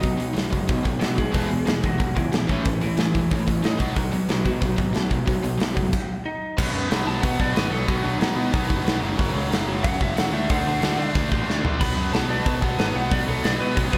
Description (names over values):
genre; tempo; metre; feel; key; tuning
punk rock; 184 BPM; 4/4; straight; unclear; A4 = 444 Hz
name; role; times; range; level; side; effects
lightly driven lead guitar; melody; 0.0-14.0 s; E3 to B5; -32 LUFS; equal; slapback echo, tape echo
tight distorted guitar; riff; 0.0-14.0 s; E2 to D4; -29 LUFS; equal; distortion, slapback echo
fuzz picked electric bass; bass; 0.0-14.0 s; E1 to D3; -30 LUFS; equal; overdrive
big rock drum kit; drums; 0.0-14.0 s; crash cymbal, hi-hat, kick drum, snare drum, toms; -27 LUFS; equal; none
room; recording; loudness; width
moderate recital hall reverb, RT60 1.5 s, small room ambience; big arena sound; -23 LUFS; mono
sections
0.0-6.6 A section; 6.6-14.0 B section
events
stop 5.9-6.6; lead electric guitar solo 6.6-14.0; drum fill 11.5-11.8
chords
0.0 B; 1.3 E; 2.5 A; 3.8 B; 9.0 F#5; 10.3 D; 11.8 B5